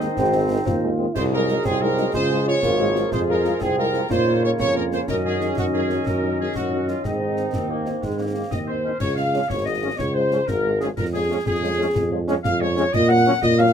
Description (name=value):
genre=military-style march for wind band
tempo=122 BPM (dotted quarters)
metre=6/8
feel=straight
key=Db major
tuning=A4 = 439 Hz
part: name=mellow trumpet section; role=melody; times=0.0-13.7 s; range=Eb4 to Gb5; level=-26 LUFS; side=equal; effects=none
part: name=clear euphonium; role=second line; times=0.0-8.8 s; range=Ab3 to Gb4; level=-27 LUFS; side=right 3 dB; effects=none
part: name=warm woodwind section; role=second line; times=0.0-13.7 s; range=Ab3 to Gb5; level=-26 LUFS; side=left 1 dB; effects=none
part: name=dark French horn section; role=accompaniment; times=0.0-13.6 s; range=Eb3 to F4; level=-29 LUFS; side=left 2 dB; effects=none
part: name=mellow trombone section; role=sustained chords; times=0.0-13.3 s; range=Db3 to Db4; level=-28 LUFS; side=equal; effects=none
part: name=warm tuba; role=bass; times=0.0-13.7 s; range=Ab1 to Bb2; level=-23 LUFS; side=right 1 dB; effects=none
part: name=concert snare drum, concert bass drum and clash cymbals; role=drums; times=0.0-13.7 s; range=none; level=-31 LUFS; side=left 1 dB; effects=none
room=moderate booth ambience, RT60 0.2 s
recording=minimal, uncompressed stereo recording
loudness=-19 LUFS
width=side -8 dB against mid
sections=0.0-9.0 A section; 9.0-13.7 B section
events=none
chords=0.0 Ab; 1.2 Ab7/C; 2.1 Db; 3.1 Fm; 4.1 Bbm; 5.1 Ebm7/Gb; 7.0 Ab; 9.0 Db; 11.0 Db/F; 12.9 Gb/Bb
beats=| 0.18 0.67 | 1.16 1.65 | 2.14 2.63 | 3.12 3.61 | 4.10 4.59 | 5.08 5.57 | 6.07 6.55 | 7.05 7.54 | 8.03 8.52 | 9.01 9.50 | 9.99 10.48 | 10.97 11.46 | 11.95 12.44 | 12.94 13.43